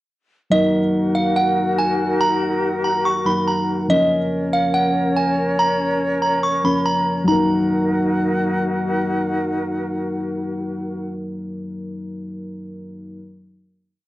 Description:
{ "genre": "hip hop, drill", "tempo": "142 BPM", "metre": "4/4", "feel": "half-time", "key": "Eb minor", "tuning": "A4 = 442 Hz", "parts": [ { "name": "delicate synth tine bell", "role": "melody", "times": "0.5-8.5 s", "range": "Eb5 to Db6", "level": "-20 LUFS", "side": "right 1 dB", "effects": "chorus, low-pass filter" }, { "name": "muted felt-like synth keys", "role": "accompaniment", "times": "0.5-13.2 s", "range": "F3 to Bb4", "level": "-21 LUFS", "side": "equal", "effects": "chorus, low-pass filter" }, { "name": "flute section", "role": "sustained chords", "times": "0.5-11.1 s", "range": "Db4 to Gb5", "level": "-24 LUFS", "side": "left 1 dB", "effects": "none" } ], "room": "moderate recital hall reverb, RT60 1.3 s, small room reverb", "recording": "worn, warbling old tape, cassette tape, warbly pitch drift", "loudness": "-17 LUFS", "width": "side -16 dB against mid", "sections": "0.5-7.3 breakdown; 7.3-10.7 final chord", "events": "none", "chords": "0.5 Ebm; 3.9 Bbm; 7.3 Ebm" }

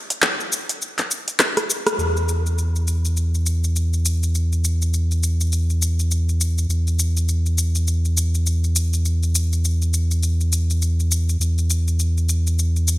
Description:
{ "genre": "organic downtempo", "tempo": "102 BPM", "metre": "4/4", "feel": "swing 60% on 16ths", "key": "unclear", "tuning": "A4 = 440 Hz", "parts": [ { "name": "deep house drum kit", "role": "drums", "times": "0.1-13.0 s", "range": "handclaps, hi-hat, rim click, shaker", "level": "-22 LUFS", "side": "left 1 dB", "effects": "studio reverb" }, { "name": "warm sub bass", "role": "bass", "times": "2.0-13.0 s", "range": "E2", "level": "-18 LUFS", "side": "equal", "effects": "none" } ], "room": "little or no reverb", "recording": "none", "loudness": "-18 LUFS", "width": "side -18 dB against mid", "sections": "0.0-2.0 A section; 2.0-13.0 B section", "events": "break 0.0-2.0; drum fill 1.4-2.0; band accent 1.8", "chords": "none" }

